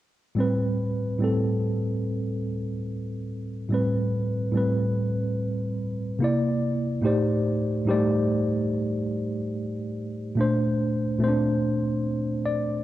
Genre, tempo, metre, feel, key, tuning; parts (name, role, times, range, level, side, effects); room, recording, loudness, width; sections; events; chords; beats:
hip hop; 72 BPM; 4/4; swing 62% on 16ths; A minor; A4 = 440 Hz
mellow tine electric piano; accompaniment; 0.4-12.8 s; A2 to D5; -23 LUFS; equal; medium stereo tremolo, low-pass filter
moderate plate reverb, RT60 2.8 s; cassette tape; -24 LUFS; side -14 dB against mid
0.4-12.8 A section
0.4 Am9; 6.2 C9; 7.0 Cm69/A; 10.4 Bbmaj9
| 0.37 1.21 2.04 2.87 | 3.71 4.54 5.37 6.21 | 7.04 7.87 8.71 9.54 | 10.37 11.21 12.04